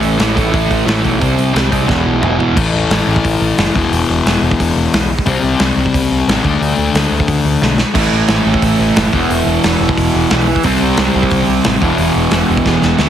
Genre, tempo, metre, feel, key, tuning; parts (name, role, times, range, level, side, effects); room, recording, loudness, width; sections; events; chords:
punk rock; 178 BPM; 4/4; straight; A4 = 439 Hz
distorted electric guitar; riff; 0.0-2.6, 7.9-13.1 s; E2 to C4; -17 LUFS; right 13 dB; distortion
sludgy distorted guitar; riff; 0.0-13.1 s; E2 to D4; -15 LUFS; left 4 dB; overdrive
growling picked electric bass; bass; 0.0-13.1 s; E1 to D2; -19 LUFS; right 1 dB; overdrive
big rock drum kit; drums; 0.0-13.1 s; crash cymbal, hi-hat, kick drum, snare drum, toms; -17 LUFS; equal
little or no reverb; heavily compressed radio sound; -11 LUFS; side -10 dB against mid
0.0-2.6 A section; 2.6-13.1 B section
drum fill 1.9-2.6, 7.6-8.0, 12.7-13.1
0.0 A5; 1.2 C5; 1.9 E5; 2.6 A5; 3.7 E5; 5.3 C5; 6.4 D5; 8.0 A5; 9.1 E5; 10.6 C5; 11.8 E5